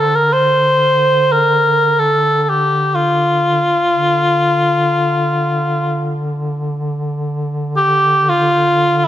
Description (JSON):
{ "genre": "caucasian folk, Caucasian lament", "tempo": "free time", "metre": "none", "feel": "none", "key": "D minor", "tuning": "A4 = 440 Hz", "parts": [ { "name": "warm cor anglais", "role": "melody", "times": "0.0-9.1 s", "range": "E4 to C5", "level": "-12 LUFS", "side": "equal", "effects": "none" }, { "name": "warm duduk", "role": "drone", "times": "0.0-9.1 s", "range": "D3", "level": "-20 LUFS", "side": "equal", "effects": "none" } ], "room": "moderate concert hall reverb, RT60 2.0 s", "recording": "none", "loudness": "-12 LUFS", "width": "side -11 dB against mid", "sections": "0.0-9.1 A section", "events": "none", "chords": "none", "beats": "free time" }